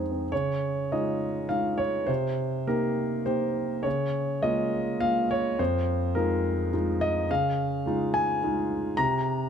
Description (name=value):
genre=neoclassical minimalist piano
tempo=104 BPM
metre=3/4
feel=rubato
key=unclear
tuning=A4 = 440 Hz
part: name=warm concert grand piano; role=solo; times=0.0-9.5 s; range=F2 to Bb5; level=-25 LUFS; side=equal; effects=none
room=light reverb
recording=none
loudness=-25 LUFS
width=side -7 dB against mid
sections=0.3-9.5 A section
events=none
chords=0.3 Dbadd9; 2.1 Cm7; 3.9 Bbm7/Db; 5.6 Fm7; 7.3 Dbadd9; 9.0 C7(no3)